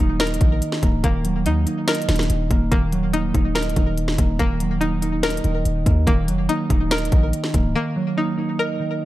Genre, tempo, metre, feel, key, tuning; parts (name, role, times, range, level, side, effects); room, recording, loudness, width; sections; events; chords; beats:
hip hop, trap; 143 BPM; 4/4; half-time; Eb minor; A4 = 440 Hz
mellow electric guitar; accompaniment; 0.0-9.1 s; Eb3 to Eb5; -23 LUFS; right 2 dB
string-like resonator pluck; arpeggios; 0.0-9.1 s; Bb3 to Bb4; -27 LUFS; left 2 dB; chorus, tape echo
warm 808-style bass; bass; 0.0-7.7 s; Db1 to Eb2; -22 LUFS; equal
trap drum kit; drums; 0.2-7.6 s; hi-hat, kick drum, snare drum; -21 LUFS; equal
little or no reverb; -18 LUFS; side -15 dB against mid
0.0-9.1 A section
break 7.8-9.1
0.0 Ebm
0.20 0.62 | 1.04 1.46 1.88 2.30 | 2.72 3.13 3.56 3.98 | 4.39 4.81 5.23 5.65 | 6.07 6.49 6.91 7.33 | 7.75 8.17 8.59 9.01